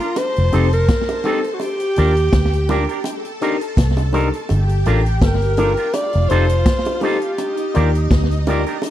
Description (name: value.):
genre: lovers rock reggae.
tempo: 83 BPM.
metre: 4/4.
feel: swing 55% on 16ths.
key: unclear.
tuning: A4 = 438 Hz.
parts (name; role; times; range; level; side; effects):
breathy alto saxophone; melody; 0.0-8.5 s; F4 to D5; -21 LUFS; equal; tape echo.
string machine, violins; second line; 0.0-8.9 s; Eb4 to Bb5; -27 LUFS; left 1 dB; ensemble chorus.
electric guitar with an envelope filter; stabs; 0.0-8.8 s; C4 to Bb4; -26 LUFS; right 6 dB; spring reverb.
vintage drum kit; drums; 0.0-8.9 s; hi-hat, kick drum, snare drum; -18 LUFS; equal; slapback echo.
bongos; percussion; 0.2-8.9 s; none; -27 LUFS; right 4 dB; none.
vintage muted fingered electric bass; bass; 0.4-8.6 s; F1 to Eb2; -16 LUFS; equal; none.
overdriven tine electric piano; accompaniment; 0.5-8.6 s; C4 to D5; -23 LUFS; left 5 dB; none.
room: little or no reverb.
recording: dry, close 1970s-style studio recording.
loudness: -15 LUFS.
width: side -12 dB against mid.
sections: 0.0-8.9 A section.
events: none.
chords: 0.2 F7; 1.6 Ebmaj7; 3.1 Cm7; 4.5 Gm7; 5.9 F7; 7.4 Ebmaj7.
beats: 0.17 0.89 | 1.61 2.33 3.05 3.78 | 4.50 5.22 5.95 6.67 | 7.39 8.12 8.84.